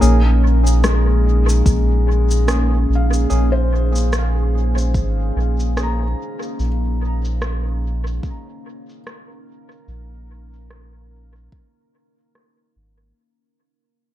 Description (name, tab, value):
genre	ambient dub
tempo	73 BPM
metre	4/4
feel	swing 58% on 16ths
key	Bb minor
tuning	A4 = 440 Hz
part	deep dark ambient pad	sustained chords	0.0-13.2 s	Bb3 to F5	-26 LUFS	equal	chorus, built-in reverb
part	tine electric piano	stabs	0.0-6.1 s	Bb3 to Ab4	-25 LUFS	left 1 dB	medium stereo tremolo, dub echo
part	soft dub sub bass	bass	0.0-13.1 s	Ab1 to Bb1	-16 LUFS	equal	tube saturation
part	electronic shaker and rim click	drums	0.0-13.1 s	none	-28 LUFS	equal	low-pass filter on perc, low-pass filter on snare, low-pass filter on room, dub echo
part	felt-muted upright piano	arpeggios	0.8-9.0 s	Ab3 to Bb5	-27 LUFS	left 5 dB	analog delay
part	electronic kick drum	drums	1.7-11.7 s	none	-21 LUFS	equal	none
room	little or no reverb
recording	echo-heavy mix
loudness	-15 LUFS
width	side -13 dB against mid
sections	0.0-13.2 A section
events	fade-out 0.0-13.2; filter sweep on drum 0.0-13.2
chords	0.0 Bbm7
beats	| 0.02 0.84 1.66 2.48 | 3.30 4.12 4.95 5.77 | 6.59 7.41 8.23 9.06 | 9.88 10.70 11.52 12.34